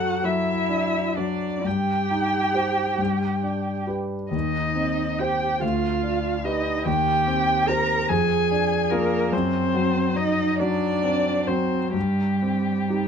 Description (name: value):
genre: classical, slow romantic movement for piano trio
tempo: 41-50 BPM (dotted quarters)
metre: 6/8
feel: rubato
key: C minor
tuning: A4 = 441 Hz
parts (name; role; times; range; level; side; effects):
- muted violin; melody; 0.0-13.1 s; G4 to Bb5; -26 LUFS; left 3 dB; none
- muted cello; second line; 0.0-13.1 s; G3 to Bb4; -26 LUFS; right 8 dB; none
- clear grand piano; accompaniment; 0.0-13.1 s; D2 to C5; -24 LUFS; left 2 dB; none
room: light reverb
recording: dark, warm production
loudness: -21 LUFS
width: side -7 dB against mid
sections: 0.0-13.1 A section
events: none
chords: 0.0 D/F#; 1.7 Cm/G; 3.0 G; 4.3 Cm/Eb; 5.6 G7/D; 6.9 Cm/Eb; 8.1 Ddim/F; 9.3 D7b9/F#; 11.9 Cm/G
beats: 0.25 | 1.65 2.99 | 4.33 5.62 | 6.87 8.10 | 9.32 10.60 | 11.95